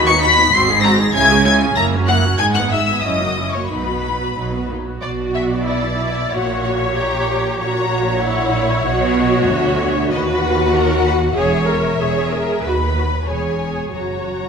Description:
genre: quick classical-period movement for string orchestra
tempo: 94 BPM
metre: 2/4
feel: rubato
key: B major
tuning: A4 = 440 Hz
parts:
  - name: warm symphonic viola section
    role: accompaniment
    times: 0.0-14.5 s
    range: F#3 to A#4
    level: -21 LUFS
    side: equal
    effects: none
  - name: dark symphonic double bass section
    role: bass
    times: 0.0-14.5 s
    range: E1 to D#2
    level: -23 LUFS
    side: right 3 dB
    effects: none
  - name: rich symphonic cello section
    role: bass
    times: 0.0-14.5 s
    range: D2 to C#3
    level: -22 LUFS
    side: right 3 dB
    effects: none
  - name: warm symphonic violin section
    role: melody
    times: 0.1-14.5 s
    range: D5 to C#7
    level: -22 LUFS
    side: left 4 dB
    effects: none
  - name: rich symphonic violin section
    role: second line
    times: 0.1-14.5 s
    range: A#4 to C#6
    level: -20 LUFS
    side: left 3 dB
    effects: none
room: wet concert hall reverb, RT60 2.4 s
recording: minimal, uncompressed stereo recording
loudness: -15 LUFS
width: side -6 dB against mid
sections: 0.0-5.0 A section; 5.0-14.5 B section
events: none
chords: 0.0 B/D#; 0.5 G#7; 1.1 C#m; 1.8 F#7; 2.4 G#m; 3.0 F#7; 3.7 B; 5.0 Bm; 6.3 F#/A#; 7.6 F#7/A#; 8.8 Bm; 10.1 B/D#; 11.4 A#m7b5/E; 12.6 B/D#; 13.3 C#m/E; 13.9 F#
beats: 0.53 | 1.14 1.77 | 2.40 3.04 | 3.70 4.36 | 5.02 5.67 | 6.31 6.96 | 7.60 8.22 | 8.85 9.47 | 10.11 10.74 | 11.36 11.99 | 12.63 13.28 | 13.93

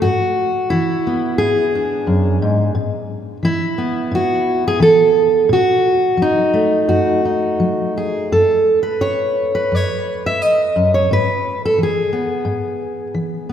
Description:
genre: folk, solo fingerstyle acoustic guitar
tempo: 87 BPM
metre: 4/4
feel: rubato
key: unclear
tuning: A4 = 439 Hz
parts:
  - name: fingerpicked steel-string acoustic guitar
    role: solo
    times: 0.0-13.5 s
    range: F#2 to E5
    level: -14 LUFS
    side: equal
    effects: none
room: wet church reverb, RT60 2.9 s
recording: recorded in a church or concert hall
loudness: -14 LUFS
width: side -9 dB against mid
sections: 0.0-13.5 A section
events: none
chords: 0.0 E7/G#; 2.8 Asus2; 5.5 B7; 8.3 F#m; 11.1 E/G#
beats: | 0.04 0.72 1.40 2.08 | 2.76 3.44 4.12 4.81 | 5.50 6.20 6.89 7.60 | 8.31 9.02 9.71 10.41 | 11.10 11.78 12.46 13.14

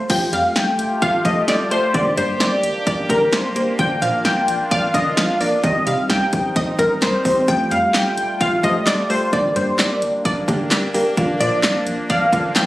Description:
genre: synth-pop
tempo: 130 BPM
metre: 4/4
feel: straight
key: unclear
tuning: A4 = 440 Hz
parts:
  - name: funky polysynth comp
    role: melody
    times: 0.0-12.7 s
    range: Bb4 to G5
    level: -19 LUFS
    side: left 1 dB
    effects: chorus, tape echo
  - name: soft electric-piano-like synth keys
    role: accompaniment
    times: 0.0-12.7 s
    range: A3 to Bb4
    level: -26 LUFS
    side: equal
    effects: chorus
  - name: analog pluck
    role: arpeggios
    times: 0.0-12.7 s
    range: D3 to Eb5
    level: -25 LUFS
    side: equal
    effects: chorus, tape echo
  - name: sweeping resonant pad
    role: sustained chords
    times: 0.1-12.7 s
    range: F3 to G4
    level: -26 LUFS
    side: right 1 dB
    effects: chorus
  - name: round analog bass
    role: bass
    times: 0.1-12.7 s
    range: F1 to C3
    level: -31 LUFS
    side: equal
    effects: none
  - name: punchy analog drum machine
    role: drums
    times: 0.1-12.7 s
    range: crash cymbal, handclaps, hi-hat, kick drum, snare drum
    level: -21 LUFS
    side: equal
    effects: none
room: light reverb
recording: recorded on a phone in the room, studio reverb, compression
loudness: -16 LUFS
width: side -16 dB against mid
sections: 0.1-12.7 A section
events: none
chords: 0.1 Fadd9; 1.9 Gm; 3.8 Bb; 5.6 Cm; 7.5 Fadd9; 9.3 Gm; 11.2 Bb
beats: | 0.10 0.56 1.02 1.48 | 1.94 2.41 2.87 3.33 | 3.79 4.25 4.71 5.17 | 5.64 6.10 6.56 7.02 | 7.48 7.94 8.41 8.87 | 9.33 9.79 10.25 10.71 | 11.18 11.64 12.10 12.56

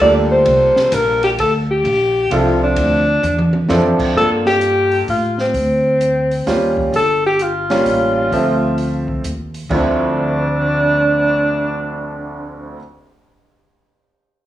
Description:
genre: jazz, small-group swing and bop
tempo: 130 BPM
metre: 3/4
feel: swing 66% on 8ths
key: D minor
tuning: A4 = 440 Hz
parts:
  - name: breathy alto saxophone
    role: melody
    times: 0.0-12.7 s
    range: C4 to D5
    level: -16 LUFS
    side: left 1 dB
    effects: cassette tape
  - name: clear baby grand piano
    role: accompaniment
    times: 0.0-12.8 s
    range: D2 to E5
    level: -18 LUFS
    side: right 1 dB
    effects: cassette tape
  - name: upright bass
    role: bass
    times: 0.0-12.7 s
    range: G1 to A2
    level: -22 LUFS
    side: equal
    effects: none
  - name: open jazz drum kit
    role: drums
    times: 0.5-12.4 s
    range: crash cymbal, cymbal swell, hi-hat, kick drum, ride cymbal, snare drum, toms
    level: -25 LUFS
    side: right 1 dB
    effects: cassette tape
room: light reverb, studio ambience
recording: home recording on cassette, studio reverb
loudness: -13 LUFS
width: side -13 dB against mid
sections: 0.0-4.2 A section; 4.2-9.7 B section; 9.7-12.5 C section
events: drum fill 3.2-3.7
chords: 0.0 Gm7; 1.4 Dm7; 4.2 Gm9; 5.1 Am; 5.5 Csus2/D; 6.5 Eb9; 6.9 Gm7; 7.9 A7b9b13; 8.3 Dm9; 9.2 N.C.; 9.7 Dm9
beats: | 0.00 0.47 0.93 | 1.39 1.85 2.31 | 2.77 3.23 3.70 | 4.16 4.62 5.08 | 5.54 6.01 6.47 | 6.93 7.39 7.86 | 8.32 8.78 9.24 | 9.71 10.17 10.63 | 11.10 11.56 12.02

